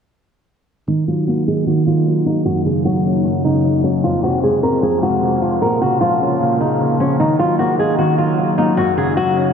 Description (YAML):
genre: hip hop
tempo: 152 BPM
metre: 4/4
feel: half-time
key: unclear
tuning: A4 = 440 Hz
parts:
  - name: flamenco guitar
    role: melody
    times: 0.9-9.5 s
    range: Db4 to Bb4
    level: -18 LUFS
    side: equal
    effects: low-pass filter, ping-pong delay
  - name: felt-muted upright piano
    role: accompaniment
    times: 0.9-9.5 s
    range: F2 to Eb5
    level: -18 LUFS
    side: left 1 dB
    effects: low-pass filter
  - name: ethereal airy pad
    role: sustained chords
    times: 1.5-9.5 s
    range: Gb3 to F5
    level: -21 LUFS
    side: right 1 dB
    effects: ensemble chorus, built-in reverb, low-pass filter
room: wet huge ambient reverb, RT60 7.3 s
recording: dreamy mix soaked in reverb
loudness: -14 LUFS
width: side -7 dB against mid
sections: 0.9-9.5 A section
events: filter sweep 0.9-9.5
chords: 0.9 Ebm; 2.5 Gb; 4.0 Fm; 5.6 Bbm; 7.2 Ebm; 8.8 Gb